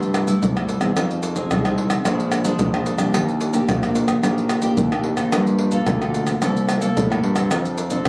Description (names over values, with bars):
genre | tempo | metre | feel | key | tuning
samba and choro | 110 BPM | 4/4 | straight | unclear | A4 = 439 Hz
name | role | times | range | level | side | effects
nylon-string guitar | accompaniment | 0.0-8.1 s | F2 to A4 | -25 LUFS | equal | none
growling fingered electric bass | bass | 0.0-8.1 s | Bb1 to A2 | -25 LUFS | equal | overdrive
maracas, pandeiro, tamborim and surdo | percussion | 0.0-8.1 s | none | -26 LUFS | equal | none
room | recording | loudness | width
light reverb | recorded on a phone in the room, club reverb | -20 LUFS | mono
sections
0.0-8.1 A section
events
none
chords
0.0 C6; 1.0 Fm7; 2.1 Bb7; 3.1 Ebmaj7; 5.3 Gm9; 6.4 C13; 7.5 F6